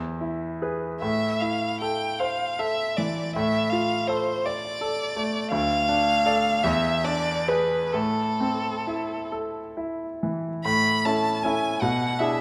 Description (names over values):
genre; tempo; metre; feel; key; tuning
classical, romantic duo for violin and grand piano; 43-56 BPM (dotted quarters); 6/8; rubato; A minor; A4 = 439 Hz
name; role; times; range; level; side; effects
bright concert grand piano; accompaniment; 0.0-12.4 s; D2 to D5; -29 LUFS; equal; none
clear violin; melody; 1.0-12.4 s; A4 to B5; -27 LUFS; equal; none
room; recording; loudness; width
moderate scoring stage reverb, RT60 1.9 s; none; -25 LUFS; mono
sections
0.0-10.7 A section; 10.7-12.4 B section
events
none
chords
0.0 E; 1.0 Am; 3.3 Dm/A; 5.5 Dm; 6.6 E7; 7.9 Am; 10.7 A; 11.8 E7/B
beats
| 1.01 2.19 | 3.35 4.45 | 5.52 6.64 | 7.93 9.31 | 10.66 11.83